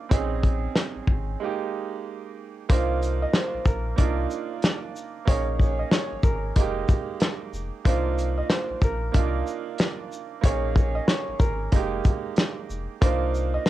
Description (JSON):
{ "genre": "hip hop, boom-bap hip-hop", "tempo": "93 BPM", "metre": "4/4", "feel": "swing 61% on 16ths", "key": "unclear", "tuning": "A4 = 436 Hz", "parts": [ { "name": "bright grand piano", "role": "accompaniment", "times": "0.0-13.7 s", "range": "Ab3 to Ab4", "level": "-30 LUFS", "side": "right 9 dB", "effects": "cassette tape, high-pass filter, low-pass filter, plate reverb" }, { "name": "warm sub bass", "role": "bass", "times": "0.1-13.6 s", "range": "F1 to C2", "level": "-28 LUFS", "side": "left 1 dB", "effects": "transformer saturation" }, { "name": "warm soul drum kit", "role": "drums", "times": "0.1-13.7 s", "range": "hi-hat, kick drum, shaker, snare drum", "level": "-21 LUFS", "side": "left 1 dB", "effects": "none" }, { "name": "bright upright piano", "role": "melody", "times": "2.7-13.7 s", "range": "Bb4 to Eb5", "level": "-31 LUFS", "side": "equal", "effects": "high-pass filter, low-pass filter, cassette tape, plate reverb, tape echo" } ], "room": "little or no reverb", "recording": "home recording on cassette", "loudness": "-22 LUFS", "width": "side -14 dB against mid", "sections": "0.0-2.7 A section; 2.7-13.7 B section", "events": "break 1.4-2.7", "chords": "0.1 Bbm11; 1.4 Ebadd11/Ab; 2.7 Cm11; 5.3 Bbm7; 6.6 Fm11; 7.9 Cm11; 10.4 Bbm7; 11.7 Fm11; 13.0 Cm11", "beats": "| 0.11 0.76 1.41 2.05 | 2.69 3.34 3.98 4.63 | 5.28 5.92 6.57 7.21 | 7.86 8.50 9.15 9.79 | 10.44 11.08 11.73 12.37 | 13.02 13.66" }